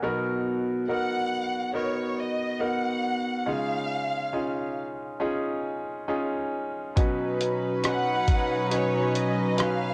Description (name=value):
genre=pop ballad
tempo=69 BPM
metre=4/4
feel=straight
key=unclear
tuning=A4 = 440 Hz
part: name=clear concert grand piano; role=accompaniment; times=0.0-9.9 s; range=B2 to F#5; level=-31 LUFS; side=equal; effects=none
part: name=rich studio violin section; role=melody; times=0.9-9.9 s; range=C#5 to F#5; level=-32 LUFS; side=equal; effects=none
part: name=warm studio string section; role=sustained chords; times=7.0-9.9 s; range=B2 to B4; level=-29 LUFS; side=equal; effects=none
part: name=lo-fi sampler-style drum kit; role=drums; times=7.0-9.8 s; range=hi-hat, kick drum, rim click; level=-27 LUFS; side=equal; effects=none
room=light reverb, small room reverb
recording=home recording on cassette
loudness=-28 LUFS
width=mono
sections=0.0-9.9 A section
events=none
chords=0.0 Bmaj7; 3.5 C#add9; 7.0 Badd9